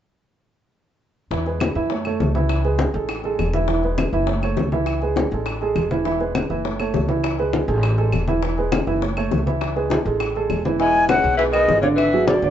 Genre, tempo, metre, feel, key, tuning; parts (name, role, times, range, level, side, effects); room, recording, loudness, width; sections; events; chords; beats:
Afro-Cuban jazz; 202 BPM; 4/4; straight; E major; A4 = 440 Hz
warm baby grand piano; accompaniment; 1.3-12.5 s; D3 to E5; -22 LUFS; right 4 dB
upright bass; bass; 1.3-12.5 s; E1 to F#2; -24 LUFS; equal
bongos; percussion; 1.3-12.5 s; -28 LUFS; left 6 dB
congas; percussion; 1.3-12.5 s; -26 LUFS; left 3 dB
claves; percussion; 1.6-12.1 s; -33 LUFS; right 1 dB
silver concert flute; melody; 10.8-12.5 s; C#5 to G#5; -18 LUFS; left 2 dB
clear tenor saxophone; second line; 10.8-12.5 s; C#3 to G#3; -25 LUFS; left 5 dB
moderate stone room reverb, RT60 0.9 s; band playing live in one room, nothing above 7.8 kHz; -18 LUFS; side -10 dB against mid
1.3-10.8 A section; 10.8-12.5 B section
1.3 E; 1.9 F#m7; 2.5 C#m7; 3.1 A5; 3.7 E; 4.3 F#m7; 4.9 C#m7; 5.5 A5; 6.1 E; 6.6 F#m7; 7.2 C#m7; 7.8 A5; 8.4 E; 9.0 F#m7; 9.6 C#m7; 10.2 A5; 10.8 E; 12.0 E9
| 1.31 1.60 1.90 2.20 | 2.50 2.79 3.09 3.38 | 3.68 3.98 4.28 4.57 | 4.87 5.17 5.46 5.76 | 6.05 6.35 6.65 6.94 | 7.24 7.54 7.83 8.13 | 8.43 8.72 9.02 9.32 | 9.61 9.91 10.21 10.50 | 10.80 11.09 11.39 11.69 | 11.98 12.28